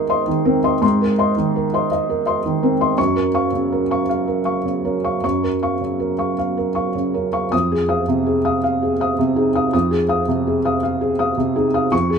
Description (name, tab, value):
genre	neoclassical minimalist piano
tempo	51-56 BPM (dotted quarters)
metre	6/8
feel	rubato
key	F phrygian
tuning	A4 = 440 Hz
part	felt-muted upright piano	solo	0.0-12.2 s	F2 to Eb6	-16 LUFS	equal	none
room	light reverb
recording	minimal, uncompressed stereo recording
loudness	-16 LUFS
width	side -6 dB against mid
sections	0.0-7.5 A section; 7.5-12.2 A section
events	none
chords	0.0 Abadd9; 3.0 Gbmaj7; 7.5 Fm7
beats	| 0.83 1.90 | 2.98 4.08 | 5.23 6.39 | 7.53 8.63 | 9.73 10.83 | 11.92